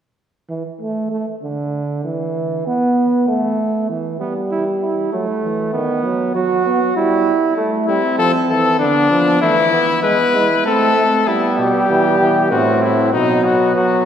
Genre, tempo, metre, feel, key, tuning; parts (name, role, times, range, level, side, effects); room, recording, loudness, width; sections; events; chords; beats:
classical, imitative canzona for brass ensemble; 97 BPM; 3/4; straight; A4 = 437 Hz
warm trombone; accompaniment; 0.5-14.1 s; D3 to B3; -19 LUFS; right 2 dB
warm flugelhorn; second line; 4.2-14.1 s; A3 to F#4; -19 LUFS; right 3 dB
clear trumpet; melody; 7.9-14.1 s; D4 to B4; -15 LUFS; left 4 dB
bright bass trombone; bass; 11.6-14.1 s; A2 to F#3; -18 LUFS; equal
wet concert hall reverb, RT60 2.6 s; heard from further back in the room; -14 LUFS; side -8 dB against mid
0.2-14.1 A section
0.2 N.C.; 3.9 Em; 5.1 Esus24; 5.7 B/D#; 7.0 Em/G; 7.6 Am; 8.8 Bdim/D; 9.4 E; 10.7 Am; 11.3 Em; 12.5 F#dim/A; 13.1 B
| 0.18 0.81 1.43 | 2.05 2.67 3.28 | 3.90 4.51 5.13 | 5.74 6.34 6.96 | 7.57 8.18 8.80 | 9.42 10.03 10.66 | 11.28 11.89 12.52 | 13.14 13.77